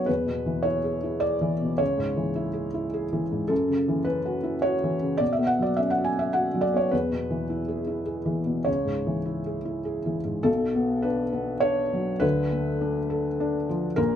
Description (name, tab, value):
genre	neoclassical minimalist piano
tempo	104 BPM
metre	3/4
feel	rubato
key	unclear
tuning	A4 = 440 Hz
part	felt-muted upright piano	solo	0.0-14.2 s	A#1 to G#5	-23 LUFS	equal	none
room	light reverb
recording	nothing above 10.8 kHz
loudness	-24 LUFS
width	side -9 dB against mid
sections	0.0-10.5 A section; 10.5-14.2 B section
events	none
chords	0.1 E; 1.8 C#m; 3.5 F#m7; 5.2 Bsus2; 6.9 E; 8.7 C#m; 10.5 Bm; 12.2 Dm